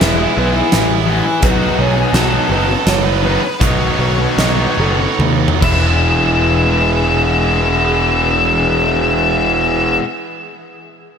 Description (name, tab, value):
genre	post-rock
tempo	68-85 BPM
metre	3/4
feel	straight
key	E major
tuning	A4 = 440 Hz
part	octave-fuzz lead guitar	melody	0.0-10.0 s	E4 to E5	-19 LUFS	left 2 dB	distortion, slapback echo
part	granular cloud pad	sustained chords	0.0-10.0 s	E3 to D#6	-30 LUFS	right 1 dB	none
part	felt-muted upright piano	arpeggios	0.0-6.5 s	E4 to E5	-24 LUFS	right 4 dB	slapback echo
part	tight distorted guitar	riff	0.0-10.0 s	B2 to E4	-19 LUFS	left 8 dB	distortion
part	tight distorted guitar	riff	0.0-10.0 s	B2 to E4	-20 LUFS	right 12 dB	distortion
part	fuzz picked electric bass	bass	0.0-10.0 s	E1 to D#2	-18 LUFS	equal	overdrive
part	huge arena drum kit	drums	0.0-5.8 s	crash cymbal, hi-hat, kick drum, snare drum, toms	-18 LUFS	equal	none
room	moderate lush hall reverb, RT60 3.0 s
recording	big arena sound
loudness	-12 LUFS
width	side -7 dB against mid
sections	0.0-6.1 A section; 6.1-11.2 B section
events	slowing down 1.4-6.1; drum fill 5.2-6.1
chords	0.0 Emaj7; 1.4 B7; 5.6 E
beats	0.02 0.72 | 1.43 2.15 2.87 | 3.62 4.39 5.20 | 6.06 6.94 7.83 | 8.71 9.60